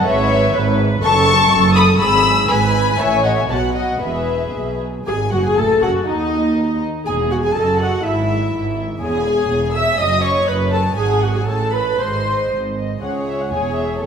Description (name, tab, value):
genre	quick classical-period movement for string orchestra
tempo	121 BPM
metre	2/4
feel	rubato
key	E major, C# minor from 9.0 s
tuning	A4 = 440 Hz
part	dark studio violin section	melody	0.0-14.1 s	D#4 to E6	-22 LUFS	left 3 dB	none
part	rich symphonic viola section	accompaniment	0.0-14.1 s	D#4 to E5	-19 LUFS	equal	none
part	warm symphonic violin section	second line	0.1-14.1 s	G#4 to E6	-22 LUFS	left 4 dB	none
part	dark studio cello section	bass	0.1-14.1 s	C#2 to B2	-22 LUFS	right 3 dB	none
part	warm symphonic double bass section	bass	0.1-14.1 s	E1 to D#2	-23 LUFS	right 2 dB	none
room	wet scoring stage reverb, RT60 1.9 s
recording	minimal, uncompressed stereo recording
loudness	-14 LUFS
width	side -7 dB against mid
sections	0.0-5.1 A section; 5.1-13.0 A section; 13.0-14.1 B section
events	none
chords	0.1 E/G#; 1.0 F#m; 2.0 E/G#; 3.0 Amaj7#11; 3.5 B; 4.0 E; 5.1 F#sus2; 5.6 F#m/A; 6.1 N.C.; 7.1 E; 7.6 D#dim/F#; 8.1 E/G#; 9.0 C#m/E; 10.0 F#madd11; 11.0 F#sus2/G#; 11.5 A; 12.0 G#; 13.0 C#5; 13.5 C#m/E